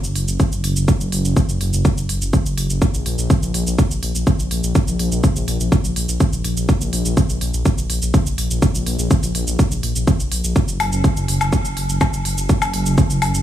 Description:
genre	melodic techno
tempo	124 BPM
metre	4/4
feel	straight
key	unclear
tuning	A4 = 442 Hz
part	dark detuned saw bass	bass	0.0-13.4 s	F#1 to A#1	-21 LUFS	equal	sidechain pumping
part	electronic shaker, hi-hat and woodblock	drums	0.0-13.4 s	none	-25 LUFS	equal	none
part	electronic kick drum	drums	0.4-13.1 s	none	-16 LUFS	equal	none
room	digital ambience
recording	studio ambience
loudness	-16 LUFS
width	side -12 dB against mid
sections	0.0-13.4 A section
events	none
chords	none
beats	0.40 | 0.88 1.36 1.85 2.33 | 2.82 3.30 3.78 4.27 | 4.75 5.24 5.72 6.20 | 6.69 7.17 7.66 8.14 | 8.62 9.11 9.59 10.07 | 10.56 11.04 11.53 12.01 | 12.49 12.98

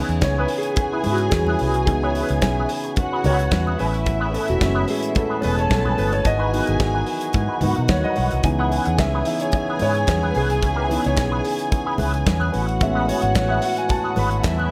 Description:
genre	disco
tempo	110 BPM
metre	4/4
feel	straight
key	unclear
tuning	A4 = 440 Hz
part	dark studio string section	second line	0.0-14.7 s	E4 to A5	-29 LUFS	equal	none
part	electric guitar with an envelope filter	accompaniment	0.0-14.7 s	C#4 to B4	-31 LUFS	equal	wah
part	warm concert grand piano	accompaniment	0.0-14.7 s	E3 to B5	-27 LUFS	equal	none
part	percussive tonewheel organ	sustained chords	0.0-14.7 s	A2 to F#4	-31 LUFS	equal	overdrive, subtle chorus
part	vintage muted fingered electric bass	bass	0.1-14.7 s	E1 to B2	-25 LUFS	equal	none
part	modern studio drum kit	drums	0.1-14.6 s	hi-hat, kick drum, snare drum	-27 LUFS	equal	none
part	congas	percussion	0.2-14.7 s	none	-33 LUFS	equal	none
part	group handclap	percussion	9.0-14.6 s	none	-39 LUFS	equal	none
room	light reverb, studio reverb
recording	none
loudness	-21 LUFS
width	mono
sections	0.0-14.7 A section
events	grand piano solo 0.0-14.7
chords	0.0 C#m7; 3.8 Amaj9; 6.3 G#m7; 8.4 C#m7; 12.5 Amaj9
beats	0.22 0.77 1.32 | 1.87 2.42 2.96 3.51 | 4.06 4.61 5.16 5.70 | 6.25 6.80 7.34 7.89 | 8.44 8.99 9.53 10.08 | 10.63 11.17 11.72 12.27 | 12.81 13.36 13.90 14.45

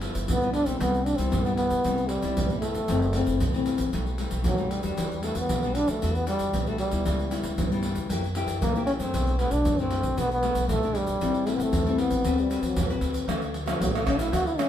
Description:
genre	samba and choro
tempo	115 BPM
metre	4/4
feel	straight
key	unclear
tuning	A4 = 439 Hz
part	nylon-string guitar	accompaniment	0.0-14.7 s	F#2 to B4	-30 LUFS	left 5 dB	none
part	upright bass	bass	0.0-14.7 s	F#1 to F#3	-30 LUFS	equal	none
part	pandeiro, egg shaker, surdo and tamborim	percussion	0.0-14.7 s	none	-30 LUFS	equal	none
part	breathy trombone	melody	0.3-14.7 s	F3 to F#4	-27 LUFS	equal	none
room	wet studio reverb, RT60 0.6 s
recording	band playing live in one room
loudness	-23 LUFS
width	side -10 dB against mid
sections	0.0-13.3 A section; 13.3-14.7 B section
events	trombone solo 13.3-14.7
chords	0.0 G6; 0.8 Cmaj7; 2.9 F#m7b5; 3.9 B7b13; 5.0 Em9; 7.1 C#m7b5; 8.1 F#7b9; 9.1 Bm7; 11.2 Am7; 12.3 D13; 13.3 Dmaj7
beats	0.29 | 0.81 1.33 1.85 2.37 | 2.89 3.41 3.93 4.45 | 4.97 5.49 6.01 6.53 | 7.05 7.57 8.09 8.61 | 9.13 9.65 10.17 10.69 | 11.21 11.73 12.25 12.77 | 13.29 13.81 14.33

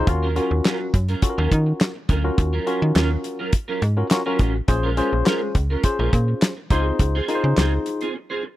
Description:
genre	early-eighties boogie funk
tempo	104 BPM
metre	4/4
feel	straight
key	Eb dorian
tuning	A4 = 440 Hz
part	tine electric piano	accompaniment	0.0-8.1 s	Db4 to C5	-24 LUFS	left 3 dB	wide subtle chorus
part	slap-like FM bass	bass	0.0-7.8 s	A1 to Eb3	-20 LUFS	equal	none
part	clean electric guitar	riff	0.1-8.5 s	Gb3 to C5	-27 LUFS	right 4 dB	ensemble chorus
part	damped 70s drum kit	drums	0.1-8.1 s	handclaps, hi-hat, kick drum, snare drum	-19 LUFS	equal	none
room	little or no reverb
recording	dry, close 1970s-style studio recording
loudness	-18 LUFS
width	side -15 dB against mid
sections	0.1-8.6 A section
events	break 8.1-8.6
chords	0.1 Ebm9; 4.7 Bbm7; 6.7 Dbmaj7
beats	| 0.07 0.65 1.23 1.80 | 2.38 2.96 3.53 4.11 | 4.69 5.26 5.84 6.42 | 7.00 7.57 8.15

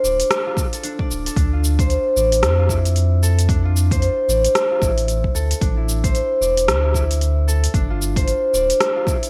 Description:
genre	organic downtempo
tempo	113 BPM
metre	4/4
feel	swing 60% on 16ths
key	D minor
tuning	A4 = 440 Hz
part	concert harp	arpeggios	0.0-9.3 s	D4 to D5	-22 LUFS	equal	digital delay
part	warm sub bass	bass	0.0-8.7 s	D1 to F2	-21 LUFS	equal	sidechain pumping
part	deep house drum kit	drums	0.0-9.3 s	cabasa, hi-hat, rim click	-26 LUFS	equal	gated reverb
part	electronic kick drum	drums	0.6-9.2 s	none	-23 LUFS	equal	none
room	wet plate reverb, RT60 1.7 s, digital ambience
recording	bright 1980s-style digital production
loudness	-18 LUFS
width	mono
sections	0.0-9.3 A section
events	none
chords	0.0 G7sus4 (rootless); 1.4 Dm7; 5.6 Asus4; 7.7 G7sus4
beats	0.31 0.84 | 1.37 1.90 2.43 2.96 | 3.49 4.02 4.55 5.08 | 5.62 6.15 6.68 7.21 | 7.74 8.27 8.80

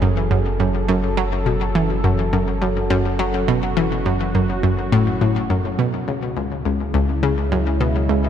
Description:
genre	ambient, sequencer-driven space music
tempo	104 BPM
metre	4/4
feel	straight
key	F# minor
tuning	A4 = 440 Hz
part	sweeping resonant pad	sustained chords	0.0-8.3 s	C#3 to A4	-24 LUFS	equal	chorus
part	analog pluck	riff	0.0-8.3 s	C#2 to F#3	-19 LUFS	equal	chorus, ping-pong delay
part	warm sub bass	bass	0.0-8.3 s	F#1 to C#2	-25 LUFS	equal	none
room	moderate cathedral reverb, RT60 5.3 s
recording	in a vast, echoing space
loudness	-17 LUFS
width	side -9 dB against mid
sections	0.0-8.3 A section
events	none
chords	0.0 F#m; 5.8 C#m7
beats	0.02 0.60 | 1.17 1.75 2.33 2.90 | 3.48 4.06 4.63 5.21 | 5.79 6.37 6.94 7.52 | 8.10

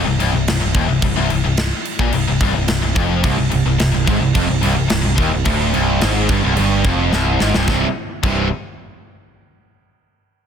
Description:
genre	heavy metal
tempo	108 BPM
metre	4/4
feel	straight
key	C minor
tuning	A4 = 440 Hz
part	biting overdriven guitar	riff	0.0-8.5 s	C2 to C3	-22 LUFS	equal	none
part	scooped high-gain guitar	riff	0.0-8.5 s	C2 to C3	-21 LUFS	left 9 dB	distortion
part	modern bright picked electric bass	bass	0.0-8.5 s	C1 to Bb1	-20 LUFS	equal	none
part	tight metal drum kit	drums	0.2-8.4 s	crash cymbal, kick drum, snare drum	-20 LUFS	equal	none
part	distorted electric guitar	riff	3.2-8.5 s	C2 to C3	-21 LUFS	right 11 dB	overdrive
room	small room ambience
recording	dense, heavily limited modern master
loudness	-14 LUFS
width	side -8 dB against mid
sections	0.0-7.7 A section; 7.7-9.9 B section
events	drum fill 7.1-7.7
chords	0.0 C5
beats	0.47 | 1.03 1.58 2.14 2.69 | 3.25 3.80 4.36 4.91 | 5.46 6.02 6.58 7.13 | 7.69 8.24

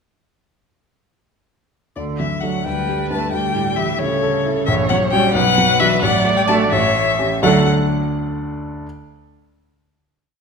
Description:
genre	quick classical-period movement for piano quartet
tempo	87 BPM (dotted quarters)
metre	6/8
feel	straight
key	D major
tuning	A4 = 440 Hz
part	warm violin	melody	2.0-7.7 s	C#5 to A5	-19 LUFS	left 6 dB	none
part	warm cello	second line	2.0-7.7 s	C#3 to A3	-22 LUFS	right 6 dB	none
part	warm grand piano	accompaniment	2.0-8.9 s	A1 to D5	-21 LUFS	equal	none
part	warm viola	accompaniment	2.7-7.7 s	G4 to D5	-22 LUFS	right 2 dB	none
room	wet scoring stage reverb, RT60 1.4 s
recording	minimal, uncompressed stereo recording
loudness	-15 LUFS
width	side -5 dB against mid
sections	2.0-7.4 A section; 7.4-8.8 final chord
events	none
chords	2.0 D; 2.7 G/D; 3.3 A7/D; 4.7 F#/A#; 5.4 Bm; 6.0 D/A; 6.7 A7; 7.4 D5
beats	| 1.97 2.66 | 3.34 4.01 | 4.68 5.35 | 6.03 6.72 | 7.44 8.14

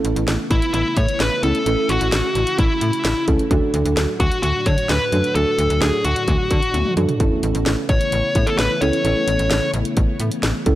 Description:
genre	synth-pop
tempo	130 BPM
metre	4/4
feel	straight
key	A major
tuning	A4 = 440 Hz
part	muted felt-like synth keys	accompaniment	0.0-10.8 s	C#4 to A4	-22 LUFS	right 2 dB	chorus
part	string machine, violas	sustained chords	0.0-10.8 s	A2 to F#4	-28 LUFS	left 1 dB	ensemble chorus
part	slap-like FM bass	bass	0.0-10.8 s	A1 to D3	-22 LUFS	equal	none
part	house drum kit	drums	0.0-10.8 s	hi-hat, kick drum, snare drum, toms	-21 LUFS	equal	none
part	dark smooth lead guitar	melody	0.5-9.7 s	E4 to C#5	-21 LUFS	left 1 dB	overdrive
room	light reverb, digital ambience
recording	dry, gritty hardware recording, transformer saturation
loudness	-16 LUFS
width	side -14 dB against mid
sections	0.0-10.8 A section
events	drum fill 6.7-7.2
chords	0.0 Aadd9; 3.5 D; 7.2 Aadd9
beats	0.28 0.74 1.20 | 1.66 2.12 2.58 3.05 | 3.51 3.97 4.43 4.89 | 5.35 5.82 6.28 6.74 | 7.20 7.66 8.12 8.59 | 9.05 9.51 9.97 10.43

